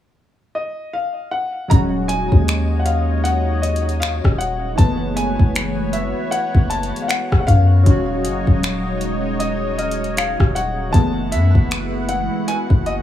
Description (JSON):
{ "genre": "contemporary R&B", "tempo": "78 BPM", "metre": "4/4", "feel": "swing 58% on 16ths", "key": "unclear", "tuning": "A4 = 440 Hz", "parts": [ { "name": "clear grand piano", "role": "melody", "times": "0.6-12.9 s", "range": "Eb5 to Bb5", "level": "-24 LUFS", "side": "left 2 dB", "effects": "digital delay" }, { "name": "warm analog keys", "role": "accompaniment", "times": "1.7-13.0 s", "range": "E3 to Gb4", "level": "-24 LUFS", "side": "equal", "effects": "chorus, phaser" }, { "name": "warm analog pad", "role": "sustained chords", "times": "1.7-13.0 s", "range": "Ab3 to F#5", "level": "-27 LUFS", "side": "equal", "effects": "chorus" }, { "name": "long sustained 808-style bass", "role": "bass", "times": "1.7-13.0 s", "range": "Eb1 to F#2", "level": "-20 LUFS", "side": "left 1 dB", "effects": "none" }, { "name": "smooth R&B drum kit", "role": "drums", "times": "1.7-13.0 s", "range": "finger snaps, hi-hat, kick drum, rim click", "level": "-16 LUFS", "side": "equal", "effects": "none" }, { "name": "celesta", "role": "texture", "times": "2.5-13.0 s", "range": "Eb5 to Ab6", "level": "-36 LUFS", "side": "right 4 dB", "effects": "none" } ], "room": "digital ambience", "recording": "small room ambience", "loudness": "-16 LUFS", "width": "side -11 dB against mid", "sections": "0.0-1.7 A section; 1.7-13.0 B section", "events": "none", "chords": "0.0 N.C.; 1.7 Ebm7; 4.8 F#m11; 7.9 Ebm11; 10.9 F#m11" }